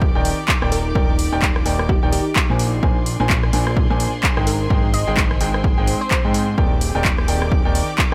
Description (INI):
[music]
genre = piano house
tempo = 128 BPM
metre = 4/4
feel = swing 58% on 16ths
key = Eb major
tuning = A4 = 440 Hz
[part]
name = bright studio violin section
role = sustained chords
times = 0.0-8.1 s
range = G4 to D6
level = -34 LUFS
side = equal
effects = vintage 12-bit sampler grit, sidechain pumping
[part]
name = clear grand piano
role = riff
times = 0.0-8.1 s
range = Bb2 to Ab5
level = -27 LUFS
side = equal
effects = sidechain pumping, digital delay
[part]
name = fat analog bass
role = bass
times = 0.0-8.1 s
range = Eb1 to Ab2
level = -24 LUFS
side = equal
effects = sidechain pumping
[part]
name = electronic kick drum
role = drums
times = 0.0-8.1 s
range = none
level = -22 LUFS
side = equal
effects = none
[part]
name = granular cloud pad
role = texture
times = 0.0-8.1 s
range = C4 to D6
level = -32 LUFS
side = equal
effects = built-in reverb, sidechain pumping
[part]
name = punchy analog drum machine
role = drums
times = 0.2-8.1 s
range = handclaps, hi-hat, rim click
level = -25 LUFS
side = equal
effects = none
[part]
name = glassy wavetable pluck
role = melody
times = 0.7-6.5 s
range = G4 to Eb5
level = -31 LUFS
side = equal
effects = chorus, digital delay
[sound]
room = little or no reverb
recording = none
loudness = -18 LUFS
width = mono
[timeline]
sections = 0.0-8.1 A section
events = none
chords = 0.0 Ebmaj7; 2.6 Bb9; 4.5 Abmaj7; 6.6 Ebmaj7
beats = 0.02 0.48 | 0.95 1.42 1.89 2.36 | 2.83 3.30 3.77 4.23 | 4.70 5.17 5.64 6.11 | 6.58 7.05 7.52 7.98